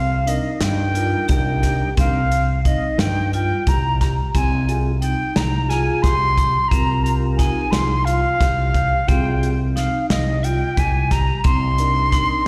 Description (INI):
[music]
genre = progressive instrumental, band music in an uneven meter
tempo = 177 BPM (eighths)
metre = 7/8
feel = straight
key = unclear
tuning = A4 = 439 Hz
[part]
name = silver concert flute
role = melody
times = 0.0-12.5 s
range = Eb5 to C6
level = -24 LUFS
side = equal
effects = slapback echo, tape echo
[part]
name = vibraphone with hard mallets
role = arpeggios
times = 0.0-12.5 s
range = G3 to G4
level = -30 LUFS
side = equal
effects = slapback echo
[part]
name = fretless electric bass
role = bass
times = 0.0-12.2 s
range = C2 to G2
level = -23 LUFS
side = equal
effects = none
[part]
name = mellow tonewheel organ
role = accompaniment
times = 0.3-12.5 s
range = D4 to Bb4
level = -32 LUFS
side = equal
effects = slow rotary speaker, slapback echo
[part]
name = natural country drum kit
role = drums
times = 0.3-12.3 s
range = hi-hat, kick drum, snare drum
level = -24 LUFS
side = equal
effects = none
[sound]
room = small room ambience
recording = live gig heard through the venue's PA, recital hall reverb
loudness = -19 LUFS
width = mono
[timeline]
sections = 0.0-12.5 A section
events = none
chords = 0.0 Cm7; 4.3 Fmadd9/C; 11.4 Cm7